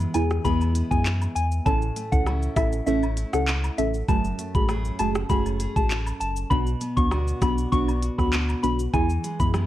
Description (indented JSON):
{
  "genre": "dancehall",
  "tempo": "99 BPM",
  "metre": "4/4",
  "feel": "straight",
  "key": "F# minor",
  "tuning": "A4 = 438 Hz",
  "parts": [
    { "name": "fingerpicked steel-string acoustic guitar", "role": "arpeggios", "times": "0.0-9.7 s", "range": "F#2 to G#4", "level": "-32 LUFS", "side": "right 1 dB", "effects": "none" },
    { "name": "sub bass with octave", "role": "bass", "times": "0.0-9.7 s", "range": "F#1 to F#2", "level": "-26 LUFS", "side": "equal", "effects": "none" },
    { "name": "afro-pop drum kit", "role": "drums", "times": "0.0-9.7 s", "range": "handclaps, hi-hat, kick drum, rim click, shaker", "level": "-25 LUFS", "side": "equal", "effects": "none" },
    { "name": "soft synth bell", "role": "melody", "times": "0.1-9.5 s", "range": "E5 to C#6", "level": "-29 LUFS", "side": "left 2 dB", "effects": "chorus" },
    { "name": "deep mellow chord stab", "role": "accompaniment", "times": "0.1-9.6 s", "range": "A3 to A4", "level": "-28 LUFS", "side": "right 1 dB", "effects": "chorus, phaser" },
    { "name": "cabasa and woodblock", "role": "percussion", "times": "0.1-9.7 s", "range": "none", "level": "-39 LUFS", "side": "left 2 dB", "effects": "none" }
  ],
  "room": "digital ambience",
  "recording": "worn, warbling old tape, cassette tape, warbly pitch drift",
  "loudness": "-21 LUFS",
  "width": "side -13 dB against mid",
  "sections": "0.0-9.7 A section",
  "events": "kick muted 2.9-4.1",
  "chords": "0.0 E; 1.7 A; 4.1 F#madd9; 6.5 Bm; 8.9 E"
}